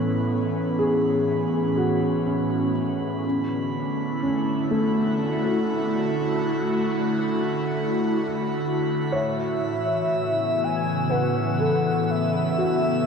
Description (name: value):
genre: ambient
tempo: 61 BPM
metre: 3/4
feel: straight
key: A major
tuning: A4 = 439 Hz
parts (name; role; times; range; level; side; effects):
- airy breathy pad; sustained chords; 0.0-13.1 s; A2 to F#4; -24 LUFS; equal; chorus, phaser
- felt-muted upright piano; arpeggios; 0.0-13.1 s; A3 to C#5; -27 LUFS; left 1 dB; ping-pong delay
- drifting glass-harmonics texture; texture; 0.0-13.1 s; B5 to E6; -36 LUFS; right 1 dB; chorus, built-in reverb
- warm velvety synth lead; melody; 9.1-13.1 s; E5 to G#5; -26 LUFS; equal; chorus, ping-pong delay
room: wet cathedral reverb, RT60 5.3 s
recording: dark, warm production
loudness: -21 LUFS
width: side -6 dB against mid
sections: 0.0-13.1 A section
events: fade-in on synth texture 0.0-13.1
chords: 0.0 A; 3.2 Dmaj7; 9.1 A